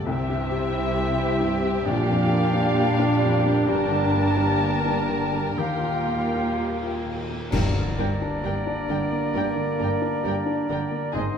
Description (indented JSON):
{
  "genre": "cinematic, emotional film score for orchestra",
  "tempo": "61-68 BPM",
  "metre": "4/4",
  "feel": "rubato",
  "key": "G phrygian from 7.5 s",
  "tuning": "A4 = 440 Hz",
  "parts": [
    { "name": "muted studio violin section", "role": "melody", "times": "0.0-11.2 s", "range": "Eb5 to A5", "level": "-32 LUFS", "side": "left 3 dB", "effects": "none" },
    { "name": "muted studio violin section", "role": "second line", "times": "0.0-11.2 s", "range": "G4 to Bb4", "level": "-34 LUFS", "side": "left 3 dB", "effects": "none" },
    { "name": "felt-muted upright piano", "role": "accompaniment", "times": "0.0-11.4 s", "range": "Bb1 to G4", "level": "-29 LUFS", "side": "left 4 dB", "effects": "none" },
    { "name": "muted studio viola section", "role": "accompaniment", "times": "0.0-11.2 s", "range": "C4 to F4", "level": "-29 LUFS", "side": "right 2 dB", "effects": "none" },
    { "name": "mellow French horn section", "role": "sustained chords", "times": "0.0-11.4 s", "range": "G3 to F4", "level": "-30 LUFS", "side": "left 1 dB", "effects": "none" },
    { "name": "muted studio double bass section", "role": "bass", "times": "0.0-11.2 s", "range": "G1 to Eb2", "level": "-30 LUFS", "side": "right 4 dB", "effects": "none" },
    { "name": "muted symphonic cello section", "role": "bass", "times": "0.0-11.2 s", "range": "Eb2 to C3", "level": "-30 LUFS", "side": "right 2 dB", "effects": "none" },
    { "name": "silver concert flute", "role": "second line", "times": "0.1-11.4 s", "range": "D5 to G5", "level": "-32 LUFS", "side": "left 1 dB", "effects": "none" },
    { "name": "warm oboe", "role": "second line", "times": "0.1-11.4 s", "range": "G4 to E5", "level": "-34 LUFS", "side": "right 4 dB", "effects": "none" },
    { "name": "timpani", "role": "percussion", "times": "1.9-8.9 s", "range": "G2 to Bb2", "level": "-30 LUFS", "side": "equal", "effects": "none" },
    { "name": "cymbal swell, clash cymbals and concert bass drum", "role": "percussion", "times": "3.7-9.3 s", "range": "none", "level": "-35 LUFS", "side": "equal", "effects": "none" }
  ],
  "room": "wet recital hall reverb, RT60 1.7 s",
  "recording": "minimal, uncompressed stereo recording",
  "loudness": "-21 LUFS",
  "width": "side -7 dB against mid",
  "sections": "0.0-7.5 A section; 7.5-11.4 B section",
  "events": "band accent 7.5-8.4",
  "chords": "0.1 C; 1.9 Bb6; 3.7 Gmadd9; 5.6 Ebadd9; 7.5 Gm"
}